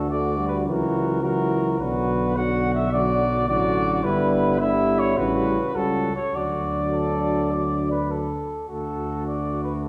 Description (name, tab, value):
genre	classical, brass quintet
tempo	106 BPM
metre	4/4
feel	straight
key	D major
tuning	A4 = 438 Hz
part	mellow cornet	melody	0.0-9.9 s	A4 to F#5	-28 LUFS	equal	none
part	dark trumpet	second line	0.0-9.9 s	E4 to D5	-32 LUFS	equal	none
part	mellow French horn	accompaniment	0.0-9.9 s	F#3 to F#4	-31 LUFS	equal	none
part	warm trombone	accompaniment	0.0-9.9 s	C#3 to A3	-31 LUFS	equal	none
part	warm bass trombone	bass	0.0-9.9 s	G1 to D2	-28 LUFS	equal	none
room	wet recital hall reverb, RT60 1.7 s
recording	recorded in a church or concert hall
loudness	-23 LUFS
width	mono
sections	0.0-8.7 A section; 8.7-9.9 A section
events	none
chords	0.0 D; 0.7 F#7/C#; 1.8 Bm; 4.0 Em7/G; 5.2 A13; 6.3 D